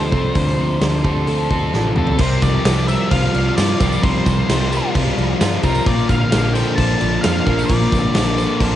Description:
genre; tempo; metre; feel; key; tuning
rock, shoegaze and dream pop; 131 BPM; 4/4; straight; unclear; A4 = 439 Hz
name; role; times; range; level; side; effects
octave-fuzz lead guitar; melody; 0.0-8.5 s; A4 to A5; -25 LUFS; left 1 dB; distortion, cassette tape, tape echo
direct-recorded clean electric guitar; arpeggios; 0.0-8.8 s; G4 to D5; -30 LUFS; right 8 dB; analog chorus, tape echo
crunchy overdriven guitar; riff; 0.0-8.8 s; Bb2 to Bb4; -22 LUFS; left 7 dB; analog chorus
overdriven semi-hollow guitar; riff; 0.0-8.8 s; Bb2 to A4; -24 LUFS; right 7 dB; reverse reverb
vintage muted picked electric bass; bass; 0.0-8.8 s; A1 to G2; -20 LUFS; equal; none
huge arena drum kit; drums; 0.1-8.7 s; crash cymbal, hi-hat, kick drum, snare drum, toms; -20 LUFS; equal; cassette tape
sludgy distorted guitar; riff; 2.2-8.8 s; Bb2 to C4; -24 LUFS; equal; overdrive
tambourine; percussion; 2.3-8.7 s; none; -37 LUFS; right 11 dB; none
room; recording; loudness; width
light reverb; home recording on cassette, nothing above 10.4 kHz; -14 LUFS; side -12 dB against mid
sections
0.0-2.2 A section; 2.2-8.8 B section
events
drum fill 1.7-2.2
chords
0.0 Dm7; 2.2 C7sus4; 5.9 Bbmaj7

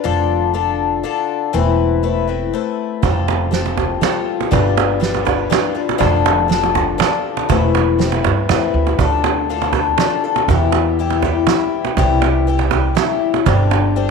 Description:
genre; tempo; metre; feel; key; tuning
acoustic folk duo or small band; 121 BPM; 3/4; straight; D dorian; A4 = 440 Hz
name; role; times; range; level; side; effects
picked twelve-string acoustic guitar; accompaniment; 0.0-14.1 s; E2 to B4; -18 LUFS; left 11 dB; none
upright bass; bass; 0.1-14.1 s; E1 to G2; -19 LUFS; right 2 dB; none
soft-mallet drum kit; drums; 3.0-14.1 s; kick drum, ride cymbal, snare drum; -24 LUFS; right 6 dB; none
cajon; percussion; 3.0-13.9 s; none; -19 LUFS; right 13 dB; none
room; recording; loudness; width
light reverb; 1960s-style stereo with parts hard left and right; -14 LUFS; side -5 dB against mid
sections
0.0-9.0 A section; 9.0-14.1 B section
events
none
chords
0.1 Dm/F; 1.5 Amadd9/E; 3.0 Fadd9; 4.5 G7; 6.0 Dm/F; 7.5 Amadd9/E; 9.0 Dm; 10.5 Em; 12.0 C; 13.5 Gsus4

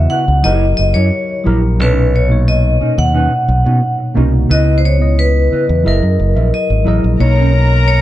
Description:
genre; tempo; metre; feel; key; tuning
soul; 89 BPM; 4/4; straight; B major; A4 = 440 Hz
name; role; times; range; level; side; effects
vibraphone with hard mallets; melody; 0.0-8.0 s; A#4 to F#5; -17 LUFS; left 2 dB; none
tine electric piano; accompaniment; 0.0-8.0 s; A#2 to F#5; -17 LUFS; equal; phaser
modern bright fingered electric bass; bass; 0.0-8.0 s; F#1 to B2; -12 LUFS; equal; none
mellow electric guitar; riff; 0.1-7.8 s; C#4 to E5; -24 LUFS; right 6 dB; lush chorus
warm studio violin section; second line; 7.2-8.0 s; A#4 to A#5; -18 LUFS; left 2 dB; none
room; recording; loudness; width
small room ambience; dark, warm production; -10 LUFS; side -14 dB against mid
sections
0.0-7.2 A section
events
none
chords
0.4 F#7b9; 1.8 Bmaj9; 4.5 C#m9; 5.8 F#13; 7.2 Bmaj9

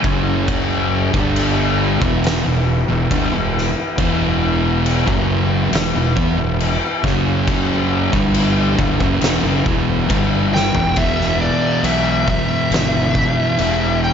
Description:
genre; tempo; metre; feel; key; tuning
stoner and doom metal; 69 BPM; 4/4; straight; unclear; A4 = 441 Hz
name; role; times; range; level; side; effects
thick fuzz guitar; riff; 0.0-14.1 s; E2 to B3; -21 LUFS; left 9 dB; distortion
thick fuzz guitar; riff; 0.0-14.1 s; E2 to B3; -21 LUFS; right 10 dB; distortion
fuzz fingered electric bass; bass; 0.0-14.1 s; E1 to E2; -22 LUFS; equal; overdrive
oversized low-tuned drum kit; drums; 0.0-13.8 s; crash cymbal, kick drum, snare drum, toms; -20 LUFS; left 1 dB; none
percussive tonewheel organ; sustained chords; 0.1-14.1 s; B2 to A4; -29 LUFS; equal; slow rotary speaker
fuzz lead guitar; melody; 10.5-14.1 s; D5 to G5; -20 LUFS; left 1 dB; distortion
room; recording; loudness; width
little or no reverb; nothing above 7.5 kHz; -15 LUFS; side -8 dB against mid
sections
0.0-11.0 A section; 11.0-14.1 B section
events
drum fill 10.5-11.0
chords
0.0 F#5; 1.1 G5; 2.0 Em; 7.0 F#5; 8.1 Em

